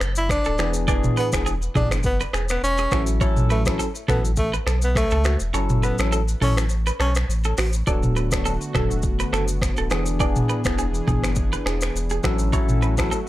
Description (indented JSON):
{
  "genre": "afrobeats",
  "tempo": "103 BPM",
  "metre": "4/4",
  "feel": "swing 55% on 16ths",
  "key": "A major",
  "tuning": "A4 = 440 Hz",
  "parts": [
    { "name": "clean electric guitar", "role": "riff", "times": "0.0-13.2 s", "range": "F#4 to D5", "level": "-29 LUFS", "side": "right 3 dB", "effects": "wide subtle chorus, tape echo" },
    { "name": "warm sub bass", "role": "bass", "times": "0.0-13.1 s", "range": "D1 to C#2", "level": "-24 LUFS", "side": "equal", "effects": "none" },
    { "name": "afro-pop drum kit", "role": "drums", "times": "0.0-13.3 s", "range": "finger snaps, hi-hat, kick drum, rim click, shaker, toms", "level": "-23 LUFS", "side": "equal", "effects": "overdrive" },
    { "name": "breathy tenor saxophone", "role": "melody", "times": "0.2-7.1 s", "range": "A3 to E4", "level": "-26 LUFS", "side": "equal", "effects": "tape echo" },
    { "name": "bell-like tine electric piano", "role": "accompaniment", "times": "0.6-13.2 s", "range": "E3 to A4", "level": "-27 LUFS", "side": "left 2 dB", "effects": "phaser" },
    { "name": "warm analog pad", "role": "sustained chords", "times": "7.9-13.3 s", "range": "D3 to G#4", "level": "-30 LUFS", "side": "left 1 dB", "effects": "chorus" }
  ],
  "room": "digital ambience",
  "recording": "dry, gritty hardware recording",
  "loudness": "-19 LUFS",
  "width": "side -15 dB against mid",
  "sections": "0.0-13.3 A section",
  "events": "kick muted 5.5-7.9",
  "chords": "0.0 D; 0.6 E7; 2.9 A6; 5.5 F#m7; 7.9 D6; 9.9 E7; 12.2 A6"
}